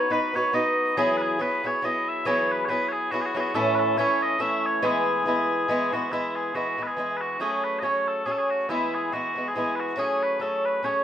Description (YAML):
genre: celtic folk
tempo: 140 BPM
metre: 3/4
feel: swing 56% on 8ths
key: E major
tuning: A4 = 440 Hz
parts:
  - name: mellow small bagpipes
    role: melody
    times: 0.0-11.0 s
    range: E4 to E5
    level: -26 LUFS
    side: equal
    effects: none
  - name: fingerpicked swing-style acoustic guitar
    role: accompaniment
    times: 0.0-11.0 s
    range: A2 to B4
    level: -25 LUFS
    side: equal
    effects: none
room: wet studio reverb, RT60 0.6 s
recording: rough home demo mix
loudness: -22 LUFS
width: side -10 dB against mid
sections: 0.0-6.1 A section; 6.1-11.0 B section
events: none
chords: 0.0 B; 1.0 Eadd9; 3.5 A; 4.8 E; 7.4 F#madd9; 8.7 E; 10.0 F#madd9